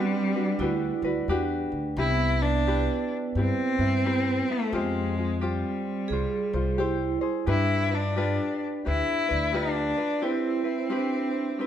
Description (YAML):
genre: Hawaiian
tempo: 87 BPM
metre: 4/4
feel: swing 63% on 8ths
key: C major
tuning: A4 = 442 Hz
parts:
  - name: rich cello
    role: melody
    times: 0.0-11.7 s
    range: G3 to E4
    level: -28 LUFS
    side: equal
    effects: none
  - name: vibraphone with medium hard mallets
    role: second line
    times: 0.0-11.7 s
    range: B3 to Ab4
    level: -31 LUFS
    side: right 5 dB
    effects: none
  - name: tenor ukulele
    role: accompaniment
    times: 0.0-11.7 s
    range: C4 to C5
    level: -31 LUFS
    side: left 3 dB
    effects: none
  - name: upright bass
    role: bass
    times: 0.6-9.9 s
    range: C2 to G2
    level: -29 LUFS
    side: left 1 dB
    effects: none
room: light reverb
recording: none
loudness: -24 LUFS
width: side -10 dB against mid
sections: 0.0-2.0 A section; 2.0-11.7 B section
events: none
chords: 0.0 Gmaj7; 2.0 Cmaj7; 4.7 Fmadd9; 7.5 G7; 10.2 Cmaj7